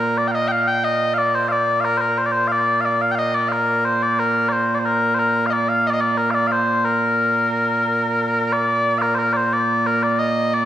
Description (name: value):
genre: scottish traditional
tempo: 90 BPM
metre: 2/4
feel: straight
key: Bb major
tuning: A4 = 438 Hz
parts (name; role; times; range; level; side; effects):
- mellow small bagpipes; solo; 0.0-10.7 s; Bb2 to G5; -17 LUFS; equal; none
room: wet recital hall reverb, RT60 1.6 s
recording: recorded in a church or concert hall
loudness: -17 LUFS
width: side -11 dB against mid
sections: 0.0-8.5 A section; 8.5-10.7 B section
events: none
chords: none